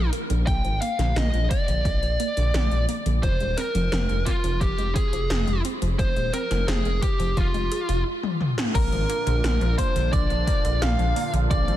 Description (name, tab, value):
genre	synthwave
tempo	87 BPM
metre	4/4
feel	straight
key	unclear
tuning	A4 = 440 Hz
part	fuzz lead guitar	melody	0.0-11.8 s	F4 to G5	-27 LUFS	equal	distortion, digital delay
part	analog pluck	arpeggios	0.0-11.8 s	D3 to Ab4	-32 LUFS	right 2 dB	chorus, digital delay
part	dark detuned saw bass	bass	0.0-11.8 s	Eb1 to Bb1	-24 LUFS	equal	sidechain pumping
part	80s electronic pad drums	drums	0.1-11.8 s	crash cymbal, hi-hat, snare drum, toms	-30 LUFS	left 1 dB	gated reverb on snare and toms, overdrive
part	electronic kick drum	drums	0.5-11.6 s	none	-25 LUFS	equal	overdrive
part	soft supersaw	sustained chords	8.7-11.8 s	Bb2 to F4	-33 LUFS	right 2 dB	sidechain pumping
part	soft synth bell	second line	8.8-11.8 s	Bb5 to F6	-34 LUFS	left 1 dB	chorus, phaser, digital delay
room	light reverb, digital ambience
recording	dense, heavily limited modern master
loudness	-21 LUFS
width	side -13 dB against mid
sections	0.0-8.8 A section; 8.8-11.8 B section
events	filter sweep on synth arpeggio sound 0.0-8.8; drum fill 8.2-8.8; band accent 8.6-8.9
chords	0.0 Bb; 3.2 Fm; 8.8 Bb